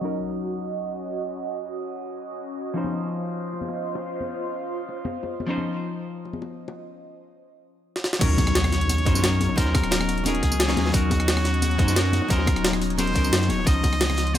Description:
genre	liquid drum and bass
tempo	176 BPM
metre	4/4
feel	straight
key	Eb dorian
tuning	A4 = 439 Hz
part	archtop guitar, miked and amplified	accompaniment	0.0-14.4 s	F3 to Db5	-28 LUFS	left 3 dB	digital delay
part	airy breathy pad	sustained chords	0.0-14.4 s	F3 to C6	-31 LUFS	right 1 dB	chorus, phaser, sidechain pumping
part	congas and bongos	percussion	2.8-14.4 s	none	-33 LUFS	left 3 dB	none
part	jungle sampler-style drum kit	drums	8.0-14.4 s	crash cymbal, hi-hat, rim click, snare drum, tambourine	-26 LUFS	equal	none
part	trumpet with straight mute	melody	8.2-14.4 s	Gb4 to Eb5	-28 LUFS	equal	none
part	warm sub bass	bass	8.2-14.4 s	Eb1 to Gb2	-25 LUFS	equal	none
part	crunchy breakbeat drum kit	drums	8.2-14.4 s	hi-hat, snare drum	-33 LUFS	equal	high-pass filter on hats, high-pass filter on snare, high-pass filter on room
part	electronic kick drum	drums	8.2-13.9 s	none	-22 LUFS	equal	none
part	impact	sound effects	8.2-9.6 s	none	-31 LUFS	equal	none
room	light reverb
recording	low-pass filter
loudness	-21 LUFS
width	side -11 dB against mid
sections	0.0-8.2 A section; 8.2-14.4 B section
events	filter sweep on analog synth pad 0.0-8.2; filter sweep 0.0-8.2; drum fill 8.0; drop 8.2-14.4; impact 8.2-9.6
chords	0.0 Ebm7; 2.8 Dbmaj9; 8.2 Ebm7; 13.7 Dbmaj9

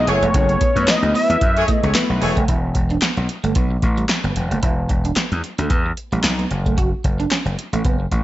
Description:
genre	early-eighties boogie funk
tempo	112 BPM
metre	4/4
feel	swing 56% on 16ths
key	unclear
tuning	A4 = 440 Hz
part	fat analog lead	melody	0.0-1.9 s	C#5 to E5	-20 LUFS	equal	tape echo
part	chorused polysynth	accompaniment	0.0-2.4 s	A3 to B4	-24 LUFS	left 3 dB	none
part	gritty slap bass	bass	0.0-8.2 s	E1 to F#2	-20 LUFS	equal	overdrive
part	clear horn section	second line	0.1-2.4 s	A3 to C#5	-24 LUFS	equal	none
part	clean electric guitar	riff	0.1-8.0 s	G3 to F#4	-26 LUFS	right 5 dB	ensemble chorus
part	electro analog drum machine	drums	0.1-8.2 s	handclaps, hi-hat, kick drum, snare drum	-20 LUFS	equal	gated reverb
part	group handclap	percussion	0.9-7.4 s	none	-28 LUFS	left 5 dB	none
room	digital ambience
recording	nothing above 7.8 kHz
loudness	-16 LUFS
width	side -15 dB against mid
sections	0.0-2.5 A section; 2.5-8.2 B section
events	none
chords	0.0 F#m11; 2.5 Esus4; 6.5 F#m

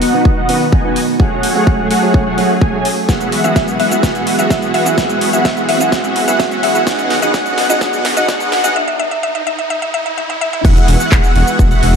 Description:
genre	EDM, festival progressive house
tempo	127 BPM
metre	4/4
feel	straight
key	E major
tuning	A4 = 437 Hz
part	warm baby grand piano	accompaniment	0.0-8.7 s	B2 to B4	-20 LUFS	right 5 dB	sidechain pumping, ping-pong delay
part	lush unison pad	sustained chords	0.0-12.0 s	D#3 to G#4	-22 LUFS	left 1 dB	chorus, sidechain pumping
part	wide unison lead	arpeggios	0.0-12.0 s	F#5 to G#5	-20 LUFS	equal	sidechain pumping, ping-pong delay
part	supersaw chords	riff	0.0-12.0 s	A3 to G#5	-18 LUFS	equal	ensemble chorus, sidechain pumping, low-pass filter, ping-pong delay
part	big-room dance drum kit	drums	0.0-11.9 s	crash cymbal, handclaps, hi-hat, shaker, snare drum, toms	-22 LUFS	equal	high-pass filter on hats, high-pass filter on snare, high-pass filter on perc, high-pass filter on toms, high-pass filter on cymbals, high-pass filter on room
part	riser	sound effects	2.2-10.6 s	none	-25 LUFS	right 2 dB	none
part	electronic kick drum	drums	0.3-11.7 s	none	-14 LUFS	equal	none
part	mallet-like synth pluck	melody	3.4-10.6 s	D#5 to E5	-20 LUFS	left 1 dB	chorus, ping-pong delay
part	wide detuned saw bass	bass	10.6-12.0 s	E1	-14 LUFS	equal	chorus, sidechain pumping
room	moderate lush hall reverb, RT60 1.7 s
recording	dark, warm production, high-pass filter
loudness	-11 LUFS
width	side -6 dB against mid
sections	0.0-10.6 A section; 10.6-12.0 B section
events	build-up 0.0-10.6; filter sweep on supersaw synth 0.0-10.6; filter sweep on analog synth lead 0.0-10.6; filter sweep 0.0-10.6; riser 2.2-10.6; drum fill 3.1-8.8, 10.2-10.6; break 8.8-10.6; drop 10.6-12.0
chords	0.0 B; 1.2 F#madd9; 3.1 Eadd9; 6.9 B; 8.8 N.C.; 10.6 Eadd9

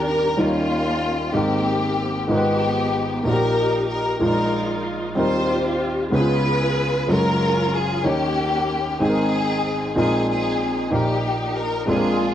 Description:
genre	gospel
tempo	63 BPM (dotted quarters)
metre	6/8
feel	straight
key	Eb major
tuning	A4 = 440 Hz
part	warm studio string section	melody	0.0-12.3 s	Ab3 to C5	-22 LUFS	left 2 dB	tape echo
part	warm grand piano	accompaniment	0.0-12.3 s	Gb1 to G5	-21 LUFS	equal	none
room	moderate echo chamber reverb, RT60 1.3 s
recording	worn, warbling old tape, cassette tape, warbly pitch drift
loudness	-18 LUFS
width	side -10 dB against mid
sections	0.0-12.3 A section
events	none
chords	0.4 Eb9; 1.3 Abmaj9; 2.3 Abm6; 3.2 Eb/Bb; 4.2 Bb7sus4; 5.2 Eb69; 6.1 Db7; 7.1 Gbmaj9; 8.0 Eb7; 9.0 Abmaj9; 10.0 Bb9sus4; 10.9 Eb/Bb

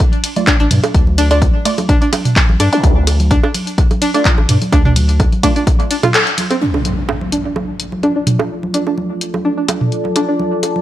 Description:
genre	minimal techno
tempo	127 BPM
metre	4/4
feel	swing 54% on 16ths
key	D minor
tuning	A4 = 438 Hz
part	electronic kick drum	drums	0.0-5.8 s	none	-13 LUFS	equal	none
part	punchy analog drum machine	drums	0.0-10.7 s	handclaps, hi-hat, ride cymbal	-19 LUFS	left 1 dB	none
part	electronic bongos, congas and toms	percussion	0.0-10.8 s	none	-19 LUFS	right 2 dB	overdrive
part	filtered dub chord stab	stabs	0.4-5.5 s	A3 to D5	-21 LUFS	right 2 dB	phaser, analog chorus, tape echo
part	string-like resonator pluck	riff	0.5-10.4 s	C4 to A4	-19 LUFS	equal	chorus, sidechain pumping, tape echo
part	saturated sub bass	bass	0.6-5.3 s	A1 to G2	-14 LUFS	equal	sidechain pumping
part	zap and impact	sound effects	2.7-2.8, 6.6-8.5 s	none	-22 LUFS	equal	none
part	deep dark ambient pad	texture	7.8-10.8 s	F4 to A5	-22 LUFS	equal	chorus, built-in reverb, sidechain pumping
room	light reverb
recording	none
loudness	-12 LUFS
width	side -13 dB against mid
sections	0.0-6.6 A section; 6.6-10.8 B section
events	drop 0.0-6.6; kick drops out 6.1-6.6; band accent 6.1; impact 6.6-8.5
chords	0.0 N.C.; 6.6 Dm

